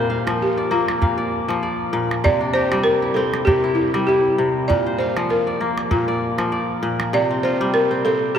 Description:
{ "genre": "west african traditional, West African string and xylophone music", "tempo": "98 BPM", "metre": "4/4", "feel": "swing 55% on 16ths", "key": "C mixolydian", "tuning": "A4 = 438 Hz", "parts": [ { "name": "balafon", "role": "melody", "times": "0.0-8.4 s", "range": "E4 to D5", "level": "-21 LUFS", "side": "right 1 dB", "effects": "none" }, { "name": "kora", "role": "arpeggios", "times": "0.0-8.4 s", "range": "Bb2 to F5", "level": "-20 LUFS", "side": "left 1 dB", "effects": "none" }, { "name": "calabash", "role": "percussion", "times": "0.3-7.1 s", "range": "none", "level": "-27 LUFS", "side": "right 1 dB", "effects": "none" } ], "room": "wet cathedral reverb, RT60 5.3 s", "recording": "in a vast, echoing space", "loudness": "-17 LUFS", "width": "side -8 dB against mid", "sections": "0.0-7.1 A section; 7.1-8.4 A section", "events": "none", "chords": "0.0 Bb; 2.2 C; 4.7 Bb; 7.1 C5" }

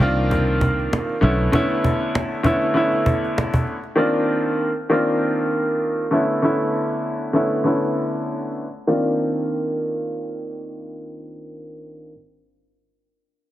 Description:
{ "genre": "hip hop, boom-bap hip-hop", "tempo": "98 BPM", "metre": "4/4", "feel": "swing 57% on 16ths", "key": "unclear", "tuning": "A4 = 440 Hz", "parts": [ { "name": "bright grand piano", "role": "accompaniment", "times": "0.0-12.1 s", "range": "D3 to F4", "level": "-20 LUFS", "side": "equal", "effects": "high-pass filter, low-pass filter" }, { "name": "fingered electric bass", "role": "bass", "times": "0.0-1.5 s", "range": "B1 to C2", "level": "-20 LUFS", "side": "equal", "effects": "none" }, { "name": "cajon", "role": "drums", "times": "0.0-3.9 s", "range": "none", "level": "-22 LUFS", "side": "equal", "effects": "none" } ], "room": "moderate plate reverb, RT60 2.8 s", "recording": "heavily compressed radio sound, multiband compression", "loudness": "-18 LUFS", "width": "side -14 dB against mid", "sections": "0.0-8.9 A section; 8.9-11.3 B section", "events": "filter sweep on grand piano 0.0-8.9", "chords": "0.0 Cm11; 1.2 Bm11; 4.0 Cm11; 6.1 Bm11; 8.9 Cm11" }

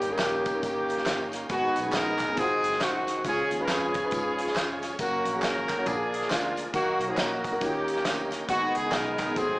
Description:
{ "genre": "uptempo gospel", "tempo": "137 BPM", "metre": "4/4", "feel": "swing 60% on 8ths", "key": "unclear", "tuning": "A4 = 442 Hz", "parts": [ { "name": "warm horn section", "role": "melody", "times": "0.0-9.6 s", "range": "G#3 to A#4", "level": "-28 LUFS", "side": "equal", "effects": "none" }, { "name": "warm upright piano", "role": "accompaniment", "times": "0.0-9.6 s", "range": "G2 to C#5", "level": "-32 LUFS", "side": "equal", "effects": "none" }, { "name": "bright tonewheel organ", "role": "sustained chords", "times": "0.0-9.6 s", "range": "D#3 to A#4", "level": "-35 LUFS", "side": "right 1 dB", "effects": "overdrive, chorus vibrato, stopped rotary speaker" }, { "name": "fingered electric bass", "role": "bass", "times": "0.0-9.6 s", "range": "E#1 to G#2", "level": "-42 LUFS", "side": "equal", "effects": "none" }, { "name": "natural country drum kit", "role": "drums", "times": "0.0-9.5 s", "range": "hi-hat, kick drum, snare drum", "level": "-33 LUFS", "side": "equal", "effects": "none" }, { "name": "tambourine and handclaps", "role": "percussion", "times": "0.0-9.5 s", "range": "none", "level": "-37 LUFS", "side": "equal", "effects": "none" } ], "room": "moderate large studio reverb, RT60 0.8 s", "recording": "band playing live in one room, small speaker sound", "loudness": "-25 LUFS", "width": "side -22 dB against mid", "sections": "0.0-9.6 A section", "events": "none", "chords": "0.0 D#7; 1.5 G#m; 2.4 G#7; 3.2 C#; 5.0 F#; 5.9 A#7; 6.7 D#m; 7.6 D#7; 8.5 G#m" }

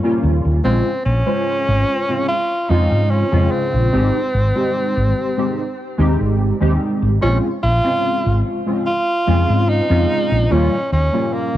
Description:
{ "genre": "vaporwave", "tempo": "73 BPM", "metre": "4/4", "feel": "straight", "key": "Bb dorian", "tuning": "A4 = 435 Hz", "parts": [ { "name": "warbly lo-fi synth keys", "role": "accompaniment", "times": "0.0-11.6 s", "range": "Db3 to C5", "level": "-20 LUFS", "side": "equal", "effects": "ensemble chorus, tape echo" }, { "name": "woody fretless electric bass", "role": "bass", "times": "0.2-11.6 s", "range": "Ab1 to Ab2", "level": "-16 LUFS", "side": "equal", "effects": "lush chorus" }, { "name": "clear tenor saxophone", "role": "melody", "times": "0.6-11.6 s", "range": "Bb3 to F4", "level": "-20 LUFS", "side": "equal", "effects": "tape echo" } ], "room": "light reverb", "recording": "cassette tape", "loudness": "-15 LUFS", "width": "side -13 dB against mid", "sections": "0.0-11.6 A section", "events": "none", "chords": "0.0 Eb9; 0.6 Bbm9; 3.9 Abmaj7; 7.2 Bbm9; 10.5 Eb9" }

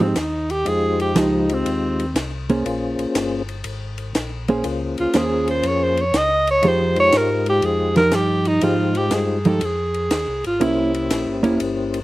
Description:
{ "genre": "soul jazz organ trio", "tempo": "121 BPM", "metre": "4/4", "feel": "swing 68% on 8ths", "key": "F minor", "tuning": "A4 = 440 Hz", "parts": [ { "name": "percussive tonewheel organ", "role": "melody", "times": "0.0-12.0 s", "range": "Ab3 to C5", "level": "-23 LUFS", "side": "left 3 dB", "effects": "slow rotary speaker, chorus vibrato" }, { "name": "warm alto saxophone", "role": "melody", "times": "0.0-11.6 s", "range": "C4 to Eb5", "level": "-20 LUFS", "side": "right 1 dB", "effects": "slapback echo" }, { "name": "hollow-body jazz guitar", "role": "accompaniment", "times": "0.0-11.6 s", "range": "F3 to C5", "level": "-19 LUFS", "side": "right 2 dB", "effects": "none" }, { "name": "mellow tonewheel organ", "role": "bass", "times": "0.0-12.0 s", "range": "E1 to Ab2", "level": "-27 LUFS", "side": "left 1 dB", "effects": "slow rotary speaker" }, { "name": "compact cocktail drum kit", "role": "drums", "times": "0.2-12.0 s", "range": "hi-hat, ride cymbal, snare drum", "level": "-28 LUFS", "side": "left 1 dB", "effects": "none" } ], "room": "little or no reverb", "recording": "recorded outdoors, with no room sound", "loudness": "-17 LUFS", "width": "side -17 dB against mid", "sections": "0.0-12.0 A section", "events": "alto saxophone solo 0.0-12.0", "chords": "0.0 Fm9; 2.7 Bbm9; 6.6 Fm9; 10.6 C7b9" }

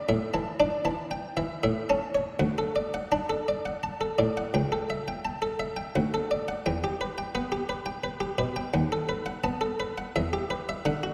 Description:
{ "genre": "classical, baroque-style suite movement for harpsichord", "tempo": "85 BPM", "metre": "3/4", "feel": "rubato", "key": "D major", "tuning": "A4 = 442 Hz", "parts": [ { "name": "buff-stop harpsichord", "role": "solo", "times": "0.0-11.1 s", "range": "C#2 to A5", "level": "-29 LUFS", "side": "equal", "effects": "none" } ], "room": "wet concert hall reverb, RT60 2.3 s", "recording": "none", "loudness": "-29 LUFS", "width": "mono", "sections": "0.0-2.4 A section; 2.4-11.1 A section", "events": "none", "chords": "0.1 Asus4; 1.6 A; 2.4 D; 4.5 A7/C#; 6.0 D; 6.7 Em; 8.7 B7/D#; 10.2 Em" }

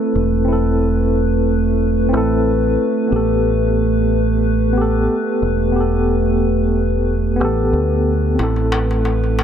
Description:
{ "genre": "trip hop", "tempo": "91 BPM", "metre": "4/4", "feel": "swing 53% on 16ths", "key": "unclear", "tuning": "A4 = 442 Hz", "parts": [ { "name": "mellow tine electric piano", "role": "accompaniment", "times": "0.0-9.4 s", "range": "B3 to A4", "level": "-20 LUFS", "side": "equal", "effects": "tremolo, tape echo" }, { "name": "warbly tape-like pad", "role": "sustained chords", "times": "0.0-9.4 s", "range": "A3 to B4", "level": "-20 LUFS", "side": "right 1 dB", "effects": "chorus, built-in reverb" }, { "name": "deep dub fingered electric bass", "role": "bass", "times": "0.2-9.4 s", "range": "E1 to D2", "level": "-18 LUFS", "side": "equal", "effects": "none" }, { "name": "darbuka", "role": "percussion", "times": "8.4-9.4 s", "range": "none", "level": "-25 LUFS", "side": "left 3 dB", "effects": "none" } ], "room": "moderate spring reverb, RT60 2.4 s", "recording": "dark, warm production", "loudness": "-14 LUFS", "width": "side -9 dB against mid", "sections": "0.0-9.4 A section", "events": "none", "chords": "0.0 Am; 3.1 Gadd9; 8.4 Am" }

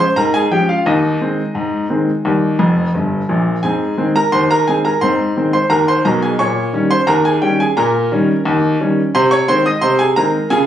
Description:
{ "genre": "ragtime piano", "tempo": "87 BPM", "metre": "2/4", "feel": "straight", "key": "Ab major", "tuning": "A4 = 439 Hz", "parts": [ { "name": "warm baby grand piano", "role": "solo", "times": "0.0-10.7 s", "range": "F1 to Eb6", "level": "-13 LUFS", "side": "equal", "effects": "none" } ], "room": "moderate studio ambience, RT60 0.5 s", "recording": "recorded on a phone in the room, club reverb, compression", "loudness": "-13 LUFS", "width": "side -10 dB against mid", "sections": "0.0-10.7 A section", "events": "grand piano fill 2.6-3.6", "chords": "0.0 Db; 0.9 Ab/Eb; 2.2 Eb; 3.6 Ab; 6.4 Eb7; 9.1 Ab/C" }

